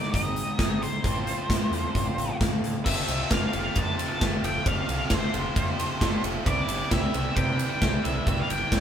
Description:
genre	indie rock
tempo	133 BPM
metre	4/4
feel	straight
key	unclear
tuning	A4 = 440 Hz
part	octave-fuzz lead guitar	melody	0.0-8.8 s	C5 to A5	-31 LUFS	equal	distortion
part	raw garage guitar	riff	0.0-8.8 s	F2 to A4	-32 LUFS	right 1 dB	overdrive
part	big rock drum kit	drums	0.0-8.8 s	crash cymbal, hi-hat, kick drum, ride cymbal, snare drum	-26 LUFS	equal	none
part	growling picked electric bass	bass	0.1-8.8 s	F1 to C3	-32 LUFS	equal	overdrive
room	light reverb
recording	band playing live in one room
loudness	-23 LUFS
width	side -9 dB against mid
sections	0.0-2.9 A section; 2.9-8.8 B section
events	none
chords	0.0 Ab; 1.0 F/A; 2.9 F; 6.5 C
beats	0.14 0.59 | 1.04 1.50 1.95 2.40 | 2.86 3.31 3.76 4.21 | 4.66 5.12 5.57 6.02 | 6.47 6.92 7.37 7.82 | 8.27 8.72

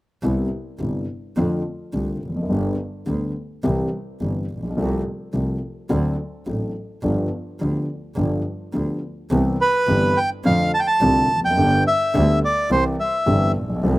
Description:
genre	tango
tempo	106 BPM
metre	4/4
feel	rubato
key	C major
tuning	A4 = 440 Hz
part	dark concert grand piano	accompaniment	0.2-14.0 s	G1 to A4	-22 LUFS	left 1 dB	none
part	clear double bass	bass	0.2-14.0 s	F1 to F2	-25 LUFS	right 1 dB	none
part	bandoneon	melody	9.6-13.5 s	B4 to A5	-18 LUFS	right 1 dB	none
room	little or no reverb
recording	recorded outdoors, with no room sound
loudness	-19 LUFS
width	side -18 dB against mid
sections	0.2-9.3 A section; 9.3-14.0 B section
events	none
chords	0.2 Cmaj7; 1.4 F6; 2.5 G; 3.6 C; 4.8 F/C; 5.9 D7; 7.0 G7; 9.3 Cmaj7; 10.4 F6; 11.6 G; 12.7 C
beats	| 0.23 0.80 1.37 1.94 | 2.50 3.07 3.64 4.20 | 4.77 5.33 5.90 6.47 | 7.04 7.60 8.17 8.74 | 9.31 9.88 10.45 11.02 | 11.58 12.14 12.71 13.27 | 13.84

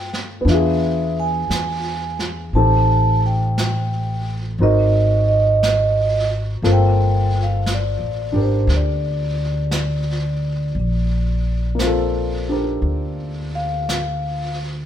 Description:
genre	jazz ballad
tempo	58 BPM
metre	4/4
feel	swing 67% on 8ths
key	G minor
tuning	A4 = 440 Hz
part	vibraphone with medium mallets	melody	0.0-14.6 s	C5 to A5	-23 LUFS	right 2 dB	none
part	warm upright piano	accompaniment	0.0-14.9 s	Bb3 to Bb4	-24 LUFS	left 1 dB	none
part	upright bass	bass	0.0-14.9 s	G1 to G2	-20 LUFS	equal	none
part	vintage brush drum kit	drums	0.1-14.9 s	brushed snare drum, hi-hat, snare drum	-30 LUFS	right 2 dB	none
room	moderate stone room reverb, RT60 1.1 s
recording	band playing live in one room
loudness	-17 LUFS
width	side -10 dB against mid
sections	0.0-14.9 A section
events	none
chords	0.5 E7b9; 2.5 Am7b5; 4.6 Ab9; 6.6 Gm11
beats	0.47 1.50 | 2.54 3.57 4.59 5.61 | 6.63 7.65 8.68 9.71 | 10.75 11.79 12.82 13.88

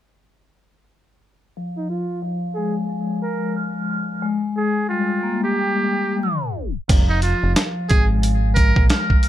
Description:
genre	hip hop, boom-bap hip-hop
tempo	90 BPM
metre	4/4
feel	swing 61% on 16ths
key	F minor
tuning	A4 = 443 Hz
part	vibraphone with medium mallets	accompaniment	1.6-9.3 s	F3 to F6	-23 LUFS	left 3 dB	cassette tape, high-pass filter, low-pass filter
part	trumpet with metal mute	melody	1.8-8.9 s	Eb4 to Bb4	-25 LUFS	right 3 dB	high-pass filter, low-pass filter, plate reverb, ping-pong delay
part	deep dub fingered electric bass	bass	6.9-8.9 s	F1 to Bb1	-19 LUFS	right 1 dB	none
part	dusty soul sampler-style drum kit	drums	6.9-9.3 s	crash cymbal, hi-hat, kick drum, snare drum	-16 LUFS	equal	none
room	light reverb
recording	tape stop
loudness	-18 LUFS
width	side -12 dB against mid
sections	1.6-6.9 A section; 6.9-9.3 B section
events	filter sweep 1.6-6.9; tape stop 6.2-6.9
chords	1.6 Fm; 4.2 Absus2; 6.9 Fm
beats	| 1.56 2.23 2.90 3.56 | 4.23 4.90 5.56 6.23 | 6.90 7.56 8.23 8.90

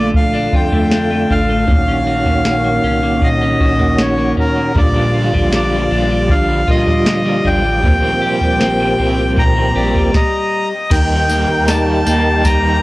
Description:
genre	dream pop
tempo	78 BPM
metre	4/4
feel	straight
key	unclear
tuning	A4 = 440 Hz
part	accordion	melody	0.0-12.8 s	Bb4 to Bb5	-18 LUFS	left 1 dB	tape echo
part	tonewheel organ	sustained chords	0.0-12.8 s	D3 to G5	-19 LUFS	right 1 dB	overdrive, chorus vibrato, slow rotary speaker
part	electric guitar at the edge of break-up	arpeggios	0.0-12.8 s	Bb2 to G4	-19 LUFS	equal	lush chorus, tape echo
part	chorused synth bass	bass	0.0-12.8 s	A1 to Bb2	-20 LUFS	equal	none
part	soft vintage rhythm box	drums	0.1-12.6 s	crash cymbal, kick drum, snare drum, tambourine, toms	-16 LUFS	equal	none
part	overdriven semi-hollow guitar	accompaniment	4.7-12.8 s	Bb2 to G4	-23 LUFS	right 1 dB	tremolo, wide subtle chorus
room	little or no reverb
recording	dry, gritty hardware recording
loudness	-12 LUFS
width	side -19 dB against mid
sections	0.0-10.9 A section; 10.9-12.8 B section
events	stop 10.1-10.9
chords	0.0 Bbmaj7; 1.7 Gb6/Bb; 4.8 Ebmaj9/Bb; 7.8 Cm7/Bb; 10.9 Eb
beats	0.14 0.91 | 1.68 2.45 3.22 3.99 | 4.76 5.53 6.30 7.07 | 7.83 8.61 9.37 10.14 | 10.91 11.68 12.45

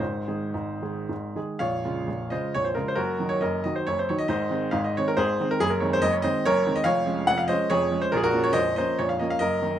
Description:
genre	classical, romantic triple-time dance for piano with dotted rhythms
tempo	107-151 BPM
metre	3/4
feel	rubato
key	unclear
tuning	A4 = 440 Hz
part	clear baby grand piano	solo	0.0-9.8 s	Bb0 to Gb5	-23 LUFS	equal	none
room	little or no reverb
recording	close, detailed microphones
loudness	-23 LUFS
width	side -10 dB against mid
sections	0.0-1.6 A section; 1.6-9.8 B section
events	none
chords	0.0 Ab; 1.6 Bbm7; 3.0 Ebm/Gb; 4.3 Ab; 5.6 Ab7/Gb; 6.9 Db/F; 8.1 Bbm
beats	| 0.01 0.56 1.10 | 1.62 2.08 2.53 | 2.96 3.40 3.86 | 4.29 4.73 5.17 | 5.59 6.02 6.45 | 6.86 7.29 7.72 | 8.13 8.56 9.01 | 9.42

